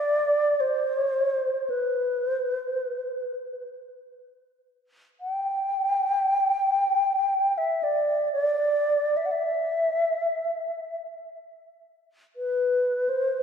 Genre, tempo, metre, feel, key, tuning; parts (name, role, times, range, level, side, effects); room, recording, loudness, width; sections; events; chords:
world meditative, free-time meditation music; free time; E minor; A4 = 441 Hz
mellow wooden-headed alto flute; solo; 0.0-13.4 s; B4 to G5; -23 LUFS; equal; analog delay
wet lush hall reverb, RT60 2.6 s; dreamy mix soaked in reverb; -23 LUFS; side -7 dB against mid
0.0-13.4 A section